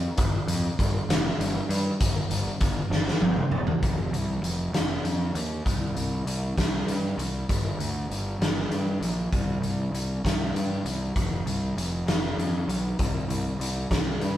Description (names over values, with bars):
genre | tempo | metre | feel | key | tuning
psychedelic rock | 66 BPM (dotted quarters) | 6/8 | straight | unclear | A4 = 440 Hz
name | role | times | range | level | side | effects
fuzz picked electric bass | bass | 0.0-14.4 s | E1 to G2 | -28 LUFS | equal | overdrive
raw garage drum kit | drums | 0.2-14.4 s | hi-hat, kick drum, snare drum, toms | -26 LUFS | equal | none
room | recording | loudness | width
light reverb | band playing live in one room, faint mains hum | -24 LUFS | side -12 dB against mid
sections
0.0-3.8 A section; 3.8-14.4 B section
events
drum fill 2.9-3.8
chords
none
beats
| 0.18 1.09 | 2.00 2.92 | 3.83 4.75 | 5.66 6.57 | 7.49 8.40 | 9.32 10.23 | 11.15 12.07 | 12.98 13.90